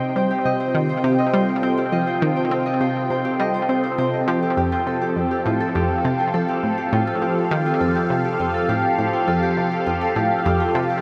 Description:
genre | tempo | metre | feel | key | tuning
ambient, sequencer-driven space music | 102 BPM | 4/4 | straight | unclear | A4 = 439 Hz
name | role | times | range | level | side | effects
phased analog pad | sustained chords | 0.0-11.0 s | C3 to G5 | -24 LUFS | equal | phaser, chorus
Celtic harp | arpeggios | 0.0-11.0 s | F4 to Eb5 | -26 LUFS | equal | delay
analog pluck | riff | 0.2-10.8 s | F2 to C4 | -26 LUFS | equal | chorus, delay
room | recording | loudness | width
wet huge ambient reverb, RT60 8.8 s | dreamy mix soaked in reverb | -21 LUFS | mono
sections
0.0-11.0 A section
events
none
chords
0.0 Cm; 4.6 Fadd9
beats
0.45 1.04 1.63 | 2.22 2.81 3.40 3.98 | 4.57 5.16 5.75 6.34 | 6.92 7.51 8.10 8.69 | 9.28 9.87 10.45

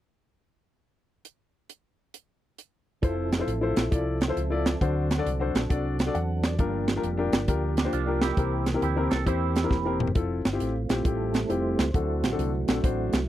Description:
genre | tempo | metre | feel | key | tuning
uptempo gospel | 135 BPM | 4/4 | swing 65% on 8ths | F major | A4 = 440 Hz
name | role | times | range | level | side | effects
tight funk drum kit | drums | 1.2-13.2 s | hi-hat, kick drum, snare drum, toms | -26 LUFS | right 1 dB | none
warm upright piano | accompaniment | 3.0-13.2 s | G2 to F#5 | -29 LUFS | left 5 dB | none
tonewheel organ | sustained chords | 3.0-13.3 s | E3 to C5 | -32 LUFS | right 4 dB | slow rotary speaker, chorus vibrato
fingered electric bass | bass | 3.0-13.3 s | E1 to E2 | -29 LUFS | equal | none
electric guitar with an envelope filter | second line | 7.8-10.0 s | Bb3 to A4 | -32 LUFS | right 10 dB | lush chorus
room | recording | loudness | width
little or no reverb | dry, close 1970s-style studio recording | -24 LUFS | side -13 dB against mid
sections
1.2-3.0 A section; 3.0-10.2 B section; 10.2-13.3 C section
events
drum fill 9.7-10.2; tonewheel organ solo 10.2-13.3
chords
1.2 N.C.; 3.0 Fmaj7; 4.8 D7; 6.6 Gm7; 8.4 C7; 10.2 Fmaj7; 11.9 D7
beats
| 1.25 1.69 2.14 2.58 | 3.03 3.48 3.92 4.37 | 4.81 5.26 5.70 6.15 | 6.59 7.04 7.48 7.93 | 8.38 8.82 9.27 9.71 | 10.16 10.61 11.05 11.50 | 11.94 12.39 12.84

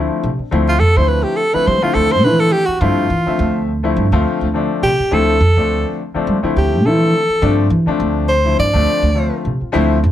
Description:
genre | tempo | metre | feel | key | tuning
jazz | 104 BPM | 4/4 | swing 55% on 16ths | unclear | A4 = 440 Hz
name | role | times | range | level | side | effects
warm grand piano | accompaniment | 0.0-10.1 s | D3 to E5 | -19 LUFS | left 4 dB | none
upright bass | bass | 0.0-10.1 s | D2 to G3 | -16 LUFS | right 1 dB | none
breathy tenor saxophone | melody | 0.7-9.4 s | F4 to D5 | -16 LUFS | equal | slapback echo
room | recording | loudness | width
light reverb | dark, warm production | -13 LUFS | side -12 dB against mid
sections
0.0-10.1 A section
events
tenor saxophone solo 0.0-10.1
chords
0.0 G13sus4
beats
| 0.51 1.09 1.67 2.24 | 2.82 3.39 3.97 4.55 | 5.12 5.70 6.28 6.85 | 7.43 8.00 8.58 9.16 | 9.73

